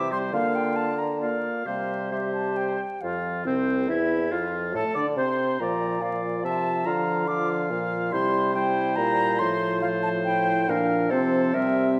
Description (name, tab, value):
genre	quick classical-period movement for wind quintet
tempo	140 BPM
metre	3/4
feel	rubato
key	F major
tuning	A4 = 440 Hz
part	concert flute	melody	0.0-12.0 s	C5 to D6	-30 LUFS	equal	none
part	clear oboe	second line	0.0-11.9 s	C4 to F5	-34 LUFS	equal	none
part	clear clarinet	accompaniment	0.0-12.0 s	C4 to D5	-33 LUFS	equal	none
part	warm French horn	accompaniment	0.0-12.0 s	C3 to D4	-34 LUFS	equal	none
part	warm bassoon	bass	0.0-12.0 s	C2 to D3	-31 LUFS	equal	none
room	wet recital hall reverb, RT60 1.6 s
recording	vinyl crackle, faint mains hum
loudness	-25 LUFS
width	mono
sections	0.0-3.0 A section; 3.0-12.0 B section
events	none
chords	0.3 Bb/D; 1.7 C5; 3.0 F5; 4.3 F; 5.6 Bb; 6.9 Bb/D; 8.1 C; 9.4 F/A; 10.7 Bb; 11.1 F/C; 11.6 C7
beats	| 0.33 0.76 1.21 | 1.67 2.12 2.58 | 3.02 3.46 3.89 | 4.32 4.75 5.18 | 5.60 6.02 6.44 | 6.87 7.29 7.71 | 8.13 8.56 8.98 | 9.40 9.83 10.26 | 10.69 11.12 11.55